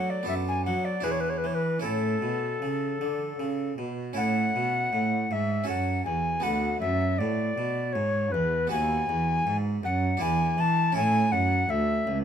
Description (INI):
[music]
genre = classical, baroque-style sonata movement with continuo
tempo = 79 BPM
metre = 3/4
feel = straight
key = A major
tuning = A4 = 439 Hz
[part]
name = alto recorder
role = melody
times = 0.0-12.2 s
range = A4 to A5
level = -28 LUFS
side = left 3 dB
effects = none
[part]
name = harpsichord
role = accompaniment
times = 0.0-12.2 s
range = C#2 to B4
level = -33 LUFS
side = equal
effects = none
[part]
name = rich cello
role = bass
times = 0.0-12.2 s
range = C#2 to F#3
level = -28 LUFS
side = right 3 dB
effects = none
[sound]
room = moderate studio reverb, RT60 0.7 s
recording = minimal, uncompressed stereo recording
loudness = -24 LUFS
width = side -8 dB against mid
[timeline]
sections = 0.0-4.2 A section; 4.2-12.2 B section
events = none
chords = 0.3 Bm7/F#; 1.1 E7; 1.8 A; 5.7 F#m; 6.5 Bm/D; 8.7 B/D#; 10.2 E7; 11.0 A